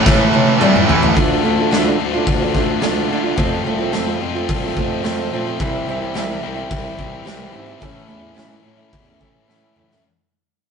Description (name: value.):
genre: quiet-loud alternative rock.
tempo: 108 BPM.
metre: 4/4.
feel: straight.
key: D minor.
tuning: A4 = 440 Hz.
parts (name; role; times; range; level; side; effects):
heavy high-gain guitar; riff; 0.0-10.0 s; A2 to F4; -22 LUFS; left 8 dB; distortion.
high-gain distorted guitar; riff; 0.0-1.1 s; A2 to A3; -16 LUFS; right 6 dB; distortion.
mellow bass clarinet; bass; 0.1-10.0 s; C2 to G3; -24 LUFS; left 1 dB; none.
big rock drum kit; drums; 0.1-10.0 s; hi-hat, kick drum, snare drum, toms; -20 LUFS; left 1 dB; none.
fingerpicked steel-string acoustic guitar; arpeggios; 1.1-10.0 s; A2 to F4; -22 LUFS; right 4 dB; none.
room: moderate stone room reverb, RT60 1.1 s.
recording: rough rehearsal-room recording, nothing above 10.4 kHz.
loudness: -15 LUFS.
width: side -6 dB against mid.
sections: 0.0-1.2 A section; 1.2-10.0 B section.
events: drum fill 0.1-1.2, 9.5-10.0; fade-out 1.2-10.0.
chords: 0.0 A; 1.2 Dm; 3.4 F; 5.6 C; 7.8 A.